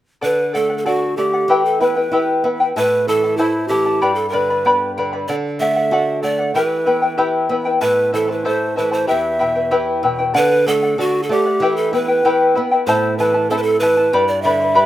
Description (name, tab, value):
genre	andean folk, Andean ensemble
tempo	95 BPM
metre	2/4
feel	straight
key	unclear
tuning	A4 = 436 Hz
part	breathy bright large pan pipes	melody	0.2-14.9 s	E4 to E5	-17 LUFS	right 1 dB	none
part	charango	accompaniment	0.2-14.9 s	E4 to B5	-18 LUFS	left 2 dB	none
part	nylon-string guitar	accompaniment	0.2-14.9 s	E2 to F#4	-24 LUFS	right 3 dB	none
room	light reverb, small room ambience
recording	rough home demo mix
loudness	-14 LUFS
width	side -13 dB against mid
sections	0.2-10.3 A section; 10.3-14.9 A section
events	none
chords	0.2 D; 1.5 Em; 2.8 Am; 4.0 G; 5.3 D; 6.6 Em; 7.8 Am; 9.1 Em; 10.3 D; 11.6 Em; 12.9 Am; 14.1 G